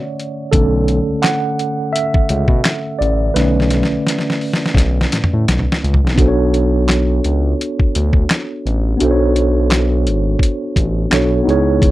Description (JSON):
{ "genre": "R&B, neo-soul", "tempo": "85 BPM", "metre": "4/4", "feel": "swing 58% on 16ths", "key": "B dorian", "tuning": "A4 = 441 Hz", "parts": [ { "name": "mellow tine electric piano", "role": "accompaniment", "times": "0.0-11.9 s", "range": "D3 to F#5", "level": "-17 LUFS", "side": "right 1 dB", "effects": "fast stereo tremolo" }, { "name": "boom bap sampler-style drum kit", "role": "drums", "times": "0.2-11.9 s", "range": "handclaps, hi-hat, kick drum, snare drum, toms", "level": "-16 LUFS", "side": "equal", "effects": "none" }, { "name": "smooth synth bass", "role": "bass", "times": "0.5-11.9 s", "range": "G#1 to B2", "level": "-16 LUFS", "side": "equal", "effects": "none" } ], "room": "little or no reverb", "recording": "dry, close 1970s-style studio recording", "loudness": "-13 LUFS", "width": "side -16 dB against mid", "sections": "0.0-6.2 A section; 6.2-11.9 B section", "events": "tine electric piano solo 0.0-6.2; drum fill 3.4-6.2", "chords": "0.0 Bm9" }